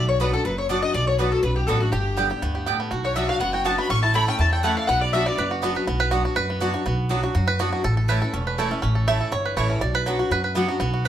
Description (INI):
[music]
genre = bluegrass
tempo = 243 BPM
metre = 4/4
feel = straight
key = B minor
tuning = A4 = 440 Hz
[part]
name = mandolin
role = melody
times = 0.0-5.5 s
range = F#4 to C#6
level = -25 LUFS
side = left 3 dB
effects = none
[part]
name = clear fiddle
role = second line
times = 0.0-5.5 s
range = F#4 to C#6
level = -29 LUFS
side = left 2 dB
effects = none
[part]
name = picked steel-string acoustic guitar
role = accompaniment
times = 0.0-11.1 s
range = E2 to G4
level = -27 LUFS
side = left 3 dB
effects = none
[part]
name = upright bass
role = bass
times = 0.0-11.1 s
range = E1 to F#2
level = -25 LUFS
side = equal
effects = none
[part]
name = mandolin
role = stabs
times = 0.2-11.1 s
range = A3 to A5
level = -29 LUFS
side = right 6 dB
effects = none
[part]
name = bluegrass banjo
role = melody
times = 1.9-11.1 s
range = F#3 to E5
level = -26 LUFS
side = right 4 dB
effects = none
[sound]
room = moderate studio reverb, RT60 0.8 s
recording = band playing live in one room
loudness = -20 LUFS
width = side -10 dB against mid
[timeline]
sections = 0.0-5.9 A section; 5.9-11.1 B section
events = five-string banjo solo 5.9-11.1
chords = 0.0 Bm; 1.9 G; 2.9 Bm; 3.9 A; 4.9 Bm; 7.8 A; 9.8 Bm